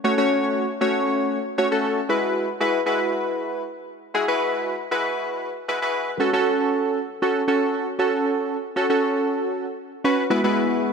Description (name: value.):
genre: pop.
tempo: 117 BPM.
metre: 4/4.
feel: straight.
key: F# minor.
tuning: A4 = 441 Hz.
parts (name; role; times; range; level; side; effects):
warm analog keys; solo; 0.0-10.9 s; G#3 to C#5; -20 LUFS; equal; chorus, digital delay.
room: light reverb, digital ambience.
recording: high-pass filter.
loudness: -20 LUFS.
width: side -5 dB against mid.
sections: 0.0-6.2 A section; 6.2-10.9 B section.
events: build-up 0.0-6.2; drop 6.2-10.9.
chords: 0.0 F#m; 2.1 Eadd9; 6.2 F#m; 10.3 Eadd9.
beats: | 0.04 0.56 1.07 1.58 | 2.10 2.61 3.12 3.63 | 4.15 4.66 5.17 5.68 | 6.20 6.71 7.22 7.74 | 8.25 8.76 9.27 9.79 | 10.30 10.81.